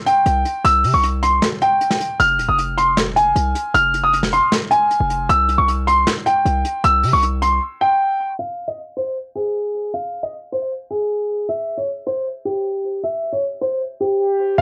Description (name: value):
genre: hip hop, trap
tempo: 155 BPM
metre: 4/4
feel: half-time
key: unclear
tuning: A4 = 442 Hz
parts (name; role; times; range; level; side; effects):
- warm concert grand piano; melody; 0.1-14.6 s; G4 to F6; -19 LUFS; equal; cassette tape
- soft brush drum kit; drums; 0.1-7.5 s; handclaps, hi-hat, snare drum; -26 LUFS; equal; cassette tape
- hard-hitting 808-style bass; bass; 0.3-7.6, 14.6 s; Eb1 to C3; -23 LUFS; equal; none
room: light reverb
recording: home recording on cassette, low-pass filter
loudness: -18 LUFS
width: mono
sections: 0.0-8.4 A section; 8.4-14.6 B section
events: break 1.4-2.2, 7.6-8.4; filter sweep 8.4-14.6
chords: 0.0 C5; 2.2 Fm; 5.3 C5; 8.4 N.C.